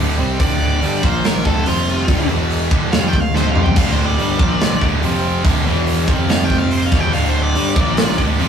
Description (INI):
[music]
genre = hard rock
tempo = 143 BPM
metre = 4/4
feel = straight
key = D minor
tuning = A4 = 440 Hz
[part]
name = high-gain distorted guitar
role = riff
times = 0.0-8.5 s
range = D2 to C4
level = -22 LUFS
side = right 6 dB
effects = distortion
[part]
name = tight distorted guitar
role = riff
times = 0.0-8.5 s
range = D2 to C4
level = -24 LUFS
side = left 7 dB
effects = distortion
[part]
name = fuzz picked electric bass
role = bass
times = 0.0-8.5 s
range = D1 to C2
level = -20 LUFS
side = equal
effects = overdrive
[part]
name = nasal lead guitar with a parked wah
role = melody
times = 0.4-8.2 s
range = F4 to G5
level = -23 LUFS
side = equal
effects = overdrive
[part]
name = big rock drum kit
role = drums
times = 0.4-8.5 s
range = crash cymbal, hi-hat, kick drum, snare drum, toms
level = -18 LUFS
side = equal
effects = none
[part]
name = distorted electric guitar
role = riff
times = 3.8-8.5 s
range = D2 to Bb3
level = -25 LUFS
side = equal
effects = distortion
[sound]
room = moderate studio reverb, RT60 0.6 s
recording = rough rehearsal-room recording, tube saturation, small room ambience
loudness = -14 LUFS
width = side -7 dB against mid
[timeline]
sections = 0.0-8.5 A section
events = lead electric guitar solo 0.0-8.5; drum fill 3.3-3.8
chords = 0.0 D5; 1.0 Bb5; 1.5 D5; 1.7 F5; 2.1 Dm; 2.3 E5; 2.7 Dm; 4.4 Bb5; 4.8 D5; 5.0 F5; 5.5 D5; 5.7 E5; 6.1 F5; 6.9 D5; 7.8 Bb5; 8.2 D5